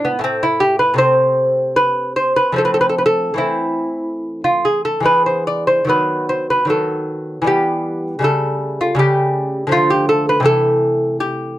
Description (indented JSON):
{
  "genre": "classical, baroque-style dance for lute",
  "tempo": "70-83 BPM",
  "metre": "3/4",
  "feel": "rubato",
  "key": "A minor",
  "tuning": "A4 = 441 Hz",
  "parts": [
    { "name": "lute", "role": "solo", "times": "0.0-11.6 s", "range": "A2 to D5", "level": "-14 LUFS", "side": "equal", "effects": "none" }
  ],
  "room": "little or no reverb",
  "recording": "dry, close 1970s-style studio recording",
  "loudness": "-14 LUFS",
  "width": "side -14 dB against mid",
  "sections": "0.0-11.6 A section",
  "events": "none",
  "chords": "0.3 N.C.; 1.0 Am/C; 2.6 F; 3.4 Am/E; 5.1 E; 5.9 B7/D#; 7.5 Em; 8.3 A7/C#; 9.7 Dm; 10.5 Am/C",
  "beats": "0.26 | 1.01 1.79 2.58 | 3.40 4.25 5.08 | 5.92 6.73 7.50 | 8.25 9.01 9.74 | 10.47 11.21"
}